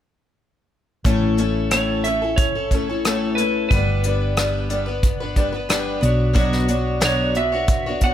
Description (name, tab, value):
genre	folk rock and heartland rock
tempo	90 BPM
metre	4/4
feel	straight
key	A major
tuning	A4 = 440 Hz
part	picked twelve-string acoustic guitar	accompaniment	1.0-8.1 s	A2 to C#5	-22 LUFS	left 2 dB	none
part	hollow-body short-scale fingered electric bass	bass	1.1-8.1 s	G1 to B1	-24 LUFS	equal	none
part	soft brush drum kit	drums	1.1-8.1 s	hi-hat, kick drum, rim click, snare drum	-21 LUFS	equal	none
part	clean lap steel guitar	melody	1.7-8.1 s	B4 to F#5	-22 LUFS	right 2 dB	none
room	little or no reverb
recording	none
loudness	-17 LUFS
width	side -10 dB against mid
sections	1.1-8.1 A section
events	none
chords	1.1 A; 3.7 G; 6.0 Bmadd9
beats	| 1.05 1.71 2.38 3.04 | 3.70 4.37 5.03 5.69 | 6.36 7.02 7.68